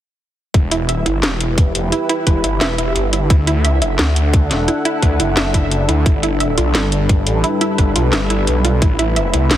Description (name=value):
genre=dark technical drum and bass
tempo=174 BPM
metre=4/4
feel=straight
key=E minor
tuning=A4 = 440 Hz
part: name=dark analog pad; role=sustained chords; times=0.9-9.6 s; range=G3 to F#5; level=-21 LUFS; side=left 1 dB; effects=chorus, sidechain pumping
part: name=wide unison pluck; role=arpeggios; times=0.5-9.4 s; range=E4 to E5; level=-22 LUFS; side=right 3 dB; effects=sidechain pumping, dub echo
part: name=snarling distorted saw bass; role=bass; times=0.5-9.6 s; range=E1 to D2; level=-17 LUFS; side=equal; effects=distortion, overdrive, sidechain pumping
part: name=drum and bass drum kit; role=drums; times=0.5-9.6 s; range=hi-hat, snare drum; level=-20 LUFS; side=equal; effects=none
part: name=electronic kick drum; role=drums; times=0.5-8.9 s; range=none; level=-13 LUFS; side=equal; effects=none
room=light reverb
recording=heavily compressed radio sound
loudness=-13 LUFS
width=side -12 dB against mid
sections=0.5-9.6 A section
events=none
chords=0.5 Em; 3.3 D; 6.1 G; 8.8 Amadd9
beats=| 0.54 0.89 1.23 1.58 | 1.92 2.27 2.61 2.96 | 3.30 3.65 3.99 4.34 | 4.68 5.03 5.37 5.71 | 6.06 6.41 6.75 7.09 | 7.44 7.78 8.13 8.47 | 8.82 9.16 9.51